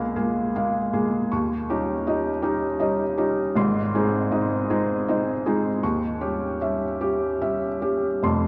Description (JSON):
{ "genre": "classical, romantic nocturne for solo piano", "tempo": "47-55 BPM (dotted quarters)", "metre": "12/8", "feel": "rubato", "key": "unclear", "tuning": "A4 = 440 Hz", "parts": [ { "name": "felt-muted upright piano", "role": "solo", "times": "0.0-8.5 s", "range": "F1 to Db6", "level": "-24 LUFS", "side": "equal", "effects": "none" } ], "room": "wet church reverb, RT60 2.8 s", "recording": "worn, warbling old tape, cassette tape, warbly pitch drift", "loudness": "-24 LUFS", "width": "mono", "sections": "0.0-8.5 A section", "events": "none", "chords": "0.0 Bbm7/Db; 1.3 Eb7; 3.6 Ab; 5.8 Eb7b9", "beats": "0.16 1.31 2.42 | 3.56 4.70 5.83 7.01 | 8.23" }